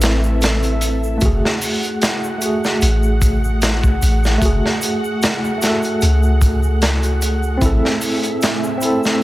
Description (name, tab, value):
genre	trip hop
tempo	75 BPM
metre	4/4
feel	swing 55% on 16ths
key	F# minor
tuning	A4 = 441 Hz
part	tine electric piano	accompaniment	0.0-9.2 s	A3 to B4	-21 LUFS	equal	tremolo, tape echo
part	string machine, cellos	sustained chords	0.0-9.2 s	A3 to F#5	-26 LUFS	equal	ensemble chorus, vintage 12-bit sampler grit
part	soft 808-style bass	bass	0.0-7.8 s	F#1 to C#2	-16 LUFS	equal	none
part	crunchy breakbeat drum kit	drums	0.0-9.2 s	hi-hat, kick drum, snare drum	-19 LUFS	equal	none
part	egg shaker	percussion	0.0-9.2 s	none	-31 LUFS	equal	none
part	wind-like tuned noise texture	texture	1.8-9.2 s	G#4	-31 LUFS	right 4 dB	built-in reverb
room	studio ambience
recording	none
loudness	-14 LUFS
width	side -16 dB against mid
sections	0.0-9.2 A section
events	none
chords	0.0 Am; 1.2 F#madd9; 7.6 Am